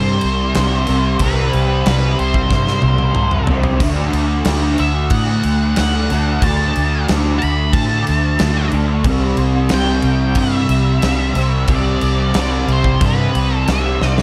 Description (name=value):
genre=rock, shoegaze and dream pop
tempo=92 BPM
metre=4/4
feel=straight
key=unclear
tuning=A4 = 440 Hz
part: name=octave-fuzz lead guitar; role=melody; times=0.0-14.2 s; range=B4 to B5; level=-25 LUFS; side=equal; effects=distortion, slapback echo
part: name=thick fuzz guitar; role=riff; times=0.0-14.2 s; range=C3 to D4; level=-20 LUFS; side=equal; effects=distortion, ensemble chorus
part: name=vintage muted fingered electric bass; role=bass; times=0.0-14.2 s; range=C2 to A2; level=-21 LUFS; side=equal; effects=none
part: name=gated 80s drum kit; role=drums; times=0.2-14.2 s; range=crash cymbal, kick drum, snare drum, splash cymbal, toms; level=-23 LUFS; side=equal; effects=none
room=small room ambience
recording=dark, warm production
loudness=-16 LUFS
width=mono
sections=0.0-14.2 A section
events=drum fill 2.5-3.8, 14.0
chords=0.0 Cmaj7(no3); 3.8 D; 9.1 C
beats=0.55 | 1.21 1.86 2.51 3.16 | 3.81 4.47 5.12 5.78 | 6.43 7.08 7.74 8.40 | 9.05 9.71 10.37 11.03 | 11.69 12.35 13.01 13.67